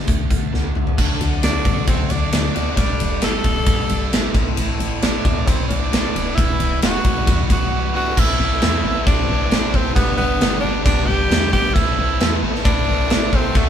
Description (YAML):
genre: classic rock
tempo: 134 BPM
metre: 4/4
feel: straight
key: A dorian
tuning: A4 = 440 Hz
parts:
  - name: cranked stack guitar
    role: riff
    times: 0.0-13.7 s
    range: G2 to G4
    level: -27 LUFS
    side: right 8 dB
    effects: overdrive
  - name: overdriven semi-hollow guitar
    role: riff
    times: 0.0-13.7 s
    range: E2 to A4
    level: -27 LUFS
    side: left 6 dB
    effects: none
  - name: woody FM bass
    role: bass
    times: 0.0-13.7 s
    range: D1 to G2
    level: -26 LUFS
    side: equal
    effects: none
  - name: big rock drum kit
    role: drums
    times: 0.1-13.7 s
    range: crash cymbal, hi-hat, kick drum, ride cymbal, snare drum, toms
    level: -18 LUFS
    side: equal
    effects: none
  - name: bright tonewheel organ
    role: sustained chords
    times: 1.0-13.7 s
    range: G3 to D5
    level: -36 LUFS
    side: equal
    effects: none
  - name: raspy tenor saxophone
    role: melody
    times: 1.4-13.7 s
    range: A3 to A4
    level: -23 LUFS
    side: equal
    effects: none
  - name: bright baby grand piano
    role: accompaniment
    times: 8.2-13.7 s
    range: B3 to B4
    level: -33 LUFS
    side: right 3 dB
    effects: none
room: light reverb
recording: band playing live in one room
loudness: -16 LUFS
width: side -9 dB against mid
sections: 1.0-8.2 A section; 8.2-13.7 B section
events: drum fill 0.5-1.0; break 7.7-8.2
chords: 0.0 D; 2.8 Gsus2; 4.4 Am; 6.4 Emadd9; 8.2 Am; 10.0 G; 11.8 Am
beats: 0.08 0.53 | 0.98 1.43 1.88 2.33 | 2.78 3.23 3.68 4.13 | 4.58 5.03 5.48 5.93 | 6.38 6.83 7.28 7.72 | 8.17 8.62 9.07 9.52 | 9.97 10.41 10.86 11.31 | 11.76 12.21 12.65 13.10 | 13.55